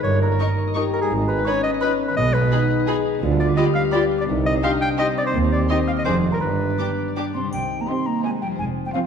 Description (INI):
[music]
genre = cinematic, playful, whimsical film cue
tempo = 170 BPM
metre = 3/4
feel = straight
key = G# minor, C minor from 3.2 s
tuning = A4 = 440 Hz
[part]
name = music box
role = melody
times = 0.0-7.1 s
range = G#5 to G6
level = -31 LUFS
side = right 4 dB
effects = none
[part]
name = clear clarinet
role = second line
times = 0.0-7.1 s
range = G#4 to G5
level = -24 LUFS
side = left 1 dB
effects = none
[part]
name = mellow French horn section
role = sustained chords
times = 0.0-9.1 s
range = Eb3 to A#4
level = -26 LUFS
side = left 3 dB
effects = none
[part]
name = concert harp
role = arpeggios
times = 0.0-9.1 s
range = F2 to D6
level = -28 LUFS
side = left 9 dB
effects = none
[part]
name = clear tuba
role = bass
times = 0.0-6.7 s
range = F1 to Eb2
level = -30 LUFS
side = right 4 dB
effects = none
[part]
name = dark chamber cello section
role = bass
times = 0.0-9.0 s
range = Eb2 to C4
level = -27 LUFS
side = right 5 dB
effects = none
[part]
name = rich studio double bass section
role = bass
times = 0.0-8.9 s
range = F1 to Eb2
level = -25 LUFS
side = right 3 dB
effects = none
[part]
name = warm studio violin section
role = melody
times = 0.4-9.1 s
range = Eb5 to D6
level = -37 LUFS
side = left 5 dB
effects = none
[part]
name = warm studio violin section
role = second line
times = 0.4-9.1 s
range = F4 to B4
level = -33 LUFS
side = left 2 dB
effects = none
[part]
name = warm studio viola section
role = accompaniment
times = 0.4-9.1 s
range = C4 to F4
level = -29 LUFS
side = equal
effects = none
[part]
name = hollow concert flute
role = second line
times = 7.3-9.0 s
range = F5 to C6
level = -28 LUFS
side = left 3 dB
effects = none
[part]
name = triangle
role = percussion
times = 7.5-8.2 s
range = none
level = -49 LUFS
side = left 2 dB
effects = none
[sound]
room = moderate scoring stage reverb, RT60 1.5 s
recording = dark, warm production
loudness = -18 LUFS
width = side -7 dB against mid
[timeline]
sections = 0.0-7.5 A section; 7.5-9.1 B section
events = none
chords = 0.0 D#7/G; 1.1 G#m; 2.2 G#m/B; 3.2 G7/D; 4.3 Cm; 5.3 Cm/Eb; 6.1 Dm7b5/F; 6.4 G; 7.5 Cm